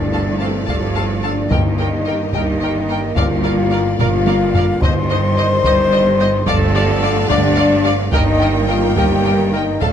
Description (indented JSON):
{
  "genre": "cinematic, epic orchestral film score",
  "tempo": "72 BPM (dotted quarters)",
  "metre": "6/8",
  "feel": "straight",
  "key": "unclear",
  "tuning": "A4 = 441 Hz",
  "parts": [
    { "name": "concert flute", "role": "second line", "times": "0.0-9.9 s", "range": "C5 to C6", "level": "-26 LUFS", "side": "left 2 dB", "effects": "none" },
    { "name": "mellow French horn section", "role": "sustained chords", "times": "0.0-9.9 s", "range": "C4 to C5", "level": "-20 LUFS", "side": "left 5 dB", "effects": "none" },
    { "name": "mellow trombone section", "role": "sustained chords", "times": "0.0-9.9 s", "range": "D3 to Bb3", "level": "-25 LUFS", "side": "right 4 dB", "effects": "none" },
    { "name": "warm symphonic string section", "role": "sustained chords", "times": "0.0-9.9 s", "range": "G3 to G5", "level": "-25 LUFS", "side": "equal", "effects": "none" },
    { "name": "bright symphonic cello section", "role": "bass", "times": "0.0-9.9 s", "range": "D2 to G2", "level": "-22 LUFS", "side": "right 2 dB", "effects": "none" },
    { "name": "rich symphonic double bass section", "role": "bass", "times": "0.0-9.9 s", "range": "G1 to D2", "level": "-21 LUFS", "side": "right 3 dB", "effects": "none" },
    { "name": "timpani", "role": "percussion", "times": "0.0-5.6, 9.8-9.9 s", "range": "G2 to D3", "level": "-26 LUFS", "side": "left 2 dB", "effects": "none" },
    { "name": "warm symphonic violin section", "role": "melody", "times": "0.1-9.9 s", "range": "Eb5 to A5", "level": "-27 LUFS", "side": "left 3 dB", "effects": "none" },
    { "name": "warm symphonic violin section", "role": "second line", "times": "0.1-9.9 s", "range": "D5 to F5", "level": "-29 LUFS", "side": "left 2 dB", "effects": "none" },
    { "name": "warm symphonic viola section", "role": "accompaniment", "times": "0.1-9.9 s", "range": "A4 to D5", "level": "-28 LUFS", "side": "right 2 dB", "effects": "none" },
    { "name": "taiko ensemble", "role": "drums", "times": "0.7-9.9 s", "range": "none", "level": "-21 LUFS", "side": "equal", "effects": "none" }
  ],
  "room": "moderate scoring stage reverb, RT60 1.5 s",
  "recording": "close, detailed microphones",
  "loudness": "-13 LUFS",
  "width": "side -9 dB against mid",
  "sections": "0.0-9.9 A section",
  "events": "drum fill 4.0-4.8",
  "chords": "0.0 Dm/G; 1.5 Eb/G; 3.2 Bb/G; 4.8 Cm/G; 6.5 Dm/G; 8.1 Eb/G"
}